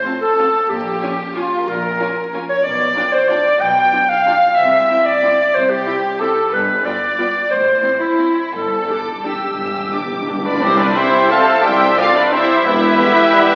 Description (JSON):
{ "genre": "classical, orchestral ballroom waltz", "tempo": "165-201 BPM", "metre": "3/4", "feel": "rubato", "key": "C major", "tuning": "A4 = 443 Hz", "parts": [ { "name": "rich studio violin section", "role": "melody", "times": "0.0-13.6 s", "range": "C5 to E6", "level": "-24 LUFS", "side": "equal", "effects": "none" }, { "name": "mellow clarinet", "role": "second line", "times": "0.0-10.4 s", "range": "E4 to G5", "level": "-18 LUFS", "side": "equal", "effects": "none" }, { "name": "rich chamber violin section", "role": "second line", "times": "0.0-13.6 s", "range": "C4 to G5", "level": "-24 LUFS", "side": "equal", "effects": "none" }, { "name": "rich symphonic viola section", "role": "accompaniment", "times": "0.0-13.6 s", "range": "B3 to A4", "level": "-26 LUFS", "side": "equal", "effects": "none" }, { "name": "dark studio cello section", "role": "bass", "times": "0.7-12.9 s", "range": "E2 to C3", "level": "-34 LUFS", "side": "equal", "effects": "none" }, { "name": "rich chamber double bass section", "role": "bass", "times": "0.7-12.9 s", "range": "E1 to C2", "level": "-32 LUFS", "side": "equal", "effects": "none" }, { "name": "timpani", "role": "percussion", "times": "8.5-10.6 s", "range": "G2", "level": "-30 LUFS", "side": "equal", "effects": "none" }, { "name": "warm oboe", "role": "second line", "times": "10.4-13.6 s", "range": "G4 to F5", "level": "-24 LUFS", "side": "equal", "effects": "none" }, { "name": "mellow small flute group", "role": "second line", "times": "10.5-13.6 s", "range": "E4 to C5", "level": "-24 LUFS", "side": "equal", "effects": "none" }, { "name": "mellow trumpet section", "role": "stabs", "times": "10.5-13.6 s", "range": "G4 to F5", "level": "-20 LUFS", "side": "equal", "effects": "none" }, { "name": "mellow tuba", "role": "bass", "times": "10.6-12.9 s", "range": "E1 to C2", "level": "-28 LUFS", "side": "equal", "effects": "none" }, { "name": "mellow bassoon", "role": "accompaniment", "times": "11.0-13.6 s", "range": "G3 to G4", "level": "-21 LUFS", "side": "equal", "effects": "none" }, { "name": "mellow French horn section", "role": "sustained chords", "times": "11.0-13.5 s", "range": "G3 to C4", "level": "-28 LUFS", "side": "equal", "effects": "none" } ], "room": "wet scoring stage reverb, RT60 2.0 s", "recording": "very old 78 rpm record, vinyl crackle, nothing above 7.5 kHz", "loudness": "-16 LUFS", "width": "mono", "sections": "0.0-10.6 A section; 10.6-13.6 B section", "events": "timpani fill 8.5-10.6", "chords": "0.0 F; 0.7 Bbm; 2.6 G7/B; 4.6 C; 6.5 G7; 7.5 Am; 8.5 G5; 10.6 C; 12.7 Em" }